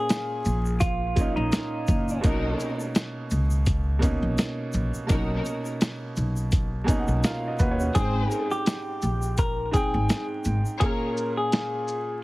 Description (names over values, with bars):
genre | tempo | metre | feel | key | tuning
hip hop, boom-bap hip-hop | 84 BPM | 4/4 | swing 55% on 16ths | unclear | A4 = 440 Hz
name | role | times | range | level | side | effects
semi-hollow electric guitar | melody | 0.0-2.2, 7.9-12.2 s | Eb4 to Bb4 | -29 LUFS | left 1 dB | high-pass filter, low-pass filter, digital delay
warm upright piano | accompaniment | 0.0-12.2 s | Ab2 to Ab5 | -30 LUFS | right 2 dB | cassette tape, high-pass filter, low-pass filter
boom bap sampler-style drum kit | drums | 0.1-12.1 s | hi-hat, kick drum, shaker, snare drum | -25 LUFS | equal | none
egg shaker | percussion | 0.1-10.8 s | none | -46 LUFS | left 2 dB | none
upright bass | bass | 0.5-10.6 s | Gb1 to D#2 | -26 LUFS | equal | none
warm studio string section | stabs | 2.2-11.1 s | C4 to Db5 | -35 LUFS | left 2 dB | high-pass filter, low-pass filter, digital delay
room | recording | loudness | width
small room ambience | heavily compressed radio sound, vinyl crackle | -23 LUFS | side -20 dB against mid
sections
0.0-12.2 A section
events
none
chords
0.0 Bbm7; 2.2 Bmaj9; 8.0 Abmaj7; 10.8 Bbm7